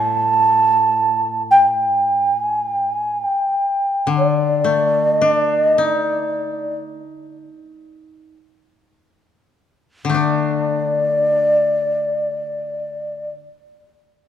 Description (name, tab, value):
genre	japanese traditional, Japanese chamber music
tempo	free time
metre	none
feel	none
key	unclear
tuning	A4 = 444 Hz
part	breathy mellow shakuhachi	melody	0.0-13.3 s	D5 to A5	-16 LUFS	right 1 dB	none
part	koto	accompaniment	0.0-13.4 s	A2 to D5	-23 LUFS	left 6 dB	none
room	light reverb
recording	dark, warm production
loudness	-16 LUFS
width	side -9 dB against mid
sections	0.0-10.2 A section; 10.2-14.3 B section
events	slowing down 4.9-10.2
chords	none